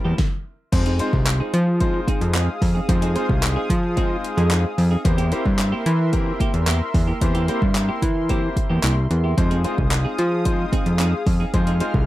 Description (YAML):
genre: dance-pop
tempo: 111 BPM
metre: 4/4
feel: straight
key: F minor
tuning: A4 = 439 Hz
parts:
  - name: bright concert grand piano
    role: accompaniment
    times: 0.0-12.1 s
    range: G3 to C5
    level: -28 LUFS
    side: left 3 dB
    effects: sidechain pumping
  - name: warm analog pad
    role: sustained chords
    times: 0.0-12.1 s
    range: Ab4 to F6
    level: -30 LUFS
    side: right 1 dB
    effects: chorus, sidechain pumping
  - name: clean electric guitar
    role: riff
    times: 0.0-12.0 s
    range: Bb3 to Ab4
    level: -30 LUFS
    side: right 3 dB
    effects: wide subtle chorus
  - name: fat analog bass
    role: bass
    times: 0.1-12.1 s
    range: C2 to F3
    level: -20 LUFS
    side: equal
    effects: sidechain pumping
  - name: deep house drum kit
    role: drums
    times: 0.2-12.1 s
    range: crash cymbal, handclaps, hi-hat, kick drum, snare drum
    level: -22 LUFS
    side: equal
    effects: none
room: little or no reverb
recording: rough home demo mix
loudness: -18 LUFS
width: side -16 dB against mid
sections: 0.7-12.1 A section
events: stop 0.2-0.7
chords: 0.0 C7/E; 0.7 Fm7; 5.1 C7/E; 9.4 Fm7